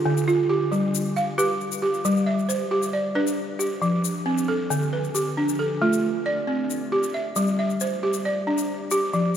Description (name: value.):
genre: west african traditional, West African string and xylophone music.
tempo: 90 BPM (dotted quarters).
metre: 12/8.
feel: straight.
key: unclear.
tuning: A4 = 440 Hz.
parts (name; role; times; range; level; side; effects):
balafon; arpeggios; 0.0-9.4 s; D3 to F5; -21 LUFS; right 1 dB; none.
tube shaker; percussion; 0.2-9.2 s; none; -34 LUFS; left 9 dB; none.
room: wet cathedral reverb, RT60 5.8 s.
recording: recorded in a church or concert hall.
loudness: -21 LUFS.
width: side -9 dB against mid.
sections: 0.0-2.0 A section; 2.0-9.4 B section.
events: none.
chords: 0.0 Dm; 0.7 G; 3.4 F; 4.7 Dm; 6.0 C; 7.4 G5; 8.7 N.C..